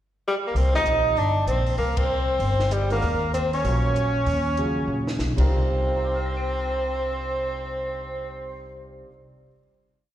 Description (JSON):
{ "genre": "modal jazz", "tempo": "194 BPM", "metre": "4/4", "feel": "swing 62% on 8ths", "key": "unclear", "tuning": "A4 = 442 Hz", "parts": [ { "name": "warm tenor saxophone", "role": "melody", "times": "0.3-8.7 s", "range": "G3 to Eb4", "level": "-26 LUFS", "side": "left 1 dB", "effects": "slapback echo" }, { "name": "upright bass", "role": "bass", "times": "0.5-9.0 s", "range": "G1 to Bb2", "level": "-25 LUFS", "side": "equal", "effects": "none" }, { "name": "warm alto saxophone", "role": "second line", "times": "0.6-8.7 s", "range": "G4 to Eb5", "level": "-31 LUFS", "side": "right 5 dB", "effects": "slapback echo" }, { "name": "compact cocktail drum kit", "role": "drums", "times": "0.6-5.4 s", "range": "crash cymbal, hi-hat, kick drum, ride cymbal, snare drum", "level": "-32 LUFS", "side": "equal", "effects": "slapback echo" }, { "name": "warm grand piano", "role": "accompaniment", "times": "0.8-9.7 s", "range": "C3 to D7", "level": "-34 LUFS", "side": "right 1 dB", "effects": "slapback echo" } ], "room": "light reverb, small room ambience", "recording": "live gig heard through the venue's PA, recital hall reverb", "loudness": "-21 LUFS", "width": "side -12 dB against mid", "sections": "0.0-0.5 pickup bar; 0.5-5.5 A section; 5.5-8.0 final chord", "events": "band accent 1.9; drum fill 4.9-5.2", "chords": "0.0 N.C.; 0.5 Cm11; 3.0 Ebm11; 5.3 Cm11" }